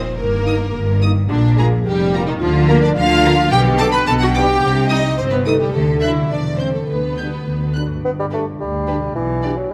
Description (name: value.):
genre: cinematic.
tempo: 108 BPM.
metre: 2/4.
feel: straight.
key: G major from 3.5 s.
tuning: A4 = 445 Hz.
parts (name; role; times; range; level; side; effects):
vibraphone with soft mallets; melody; 0.0-7.7 s; D4 to B5; -24 LUFS; equal; none.
warm studio violin section; second line; 0.0-9.5 s; D4 to B5; -25 LUFS; equal; none.
warm studio viola section; accompaniment; 0.0-9.5 s; D3 to B4; -26 LUFS; equal; none.
concert harp; arpeggios; 0.0-9.7 s; G2 to Bb4; -27 LUFS; equal; none.
dark studio double bass section; bass; 0.0-9.7 s; E1 to D2; -23 LUFS; equal; none.
warm studio cello section; bass; 0.0-9.6 s; D2 to D3; -24 LUFS; equal; none.
rich studio violin section; melody; 0.5-9.5 s; B4 to G6; -32 LUFS; equal; none.
mellow French horn section; sustained chords; 0.5-9.5 s; F#3 to G4; -29 LUFS; equal; none.
mellow bassoon; accompaniment; 8.0-9.7 s; E3 to B3; -23 LUFS; equal; none.
room: moderate scoring stage reverb, RT60 1.7 s.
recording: none.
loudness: -17 LUFS.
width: mono.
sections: 0.0-8.0 A section; 8.0-9.7 B section.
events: none.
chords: 0.2 Eb/G; 1.3 Bb5; 2.4 Bb/D; 3.5 G/B; 4.6 Cm; 5.7 D; 6.3 C/E; 6.9 G/D; 7.5 D; 8.0 G; 9.2 G/B.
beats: | 0.19 0.75 | 1.30 1.85 | 2.41 2.96 | 3.52 4.07 | 4.63 5.19 | 5.75 6.31 | 6.89 7.46 | 8.04 8.60 | 9.16 9.72.